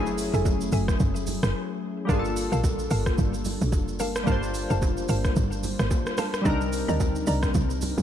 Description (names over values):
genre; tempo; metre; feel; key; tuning
amapiano; 110 BPM; 4/4; swing 58% on 16ths; G minor; A4 = 440 Hz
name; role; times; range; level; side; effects
glassy digital keys; accompaniment; 0.0-8.0 s; F#3 to C5; -29 LUFS; left 2 dB; chorus
mallet-like synth pluck; stabs; 0.0-7.4 s; A4 to Bb5; -34 LUFS; equal; chorus, phaser, ping-pong delay
tight log drum bass; bass; 0.0-8.0 s; F1 to D2; -27 LUFS; equal; none
smooth R&B drum kit; drums; 0.1-8.0 s; hi-hat, kick drum, rim click, shaker; -28 LUFS; equal; none
bongos and congas; percussion; 0.3-8.0 s; none; -34 LUFS; right 7 dB; none
room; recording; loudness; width
digital ambience; dark, warm production; -23 LUFS; side -10 dB against mid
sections
0.0-8.0 A section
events
break 1.5-2.1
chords
0.0 F#m9; 2.1 Gm9; 6.5 Cm9